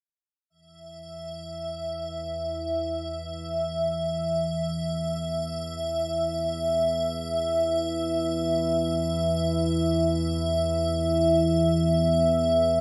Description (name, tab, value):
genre	dark ambient drone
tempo	free time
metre	none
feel	none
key	unclear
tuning	A4 = 440 Hz
part	analog drone	drone	0.9-12.8 s	E2 to E3	-30 LUFS	equal	chorus
part	icy glass pad	texture	0.9-12.8 s	E5	-28 LUFS	equal	chorus, built-in reverb
room	wet huge ambient reverb, RT60 7.2 s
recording	none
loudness	-26 LUFS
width	mono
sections	0.5-12.8 A section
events	fade-in on synth drone 0.5-12.8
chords	none